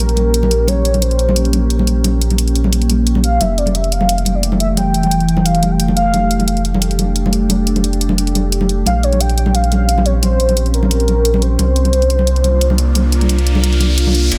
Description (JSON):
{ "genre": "liquid drum and bass", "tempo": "176 BPM", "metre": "4/4", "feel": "straight", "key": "F major", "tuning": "A4 = 440 Hz", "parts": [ { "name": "warm velvety synth lead", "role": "melody", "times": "0.0-14.0 s", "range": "Bb4 to G5", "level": "-22 LUFS", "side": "equal", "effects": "chorus, dub echo" }, { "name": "glassy FM pad", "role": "sustained chords", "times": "0.0-14.4 s", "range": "E3 to G4", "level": "-22 LUFS", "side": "equal", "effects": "ensemble chorus, built-in reverb" }, { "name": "warm sub bass", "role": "bass", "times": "0.0-14.4 s", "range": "F1 to C2", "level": "-18 LUFS", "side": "equal", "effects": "none" }, { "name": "electronic hi-hat", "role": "drums", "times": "0.0-14.4 s", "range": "none", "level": "-24 LUFS", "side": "equal", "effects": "high-pass filter on hats, studio reverb" }, { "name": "congas", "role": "percussion", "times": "0.2-14.1 s", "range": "none", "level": "-23 LUFS", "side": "equal", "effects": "none" }, { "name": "riser", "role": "sound effects", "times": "12.6-14.4 s", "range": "none", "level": "-26 LUFS", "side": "equal", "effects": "none" }, { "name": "electronic ride cymbal", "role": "drums", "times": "14.3-14.4 s", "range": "none", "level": "-22 LUFS", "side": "equal", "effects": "high-pass filter on cymbals, studio reverb" } ], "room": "little or no reverb", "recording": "faint mains hum", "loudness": "-15 LUFS", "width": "mono", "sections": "0.0-14.3 A section", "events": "filter sweep on ambient pad 0.0-14.3; riser 12.6-14.3", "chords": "0.0 Bbm6; 3.4 Fmaj7; 8.9 Bbm6; 11.6 C9sus4" }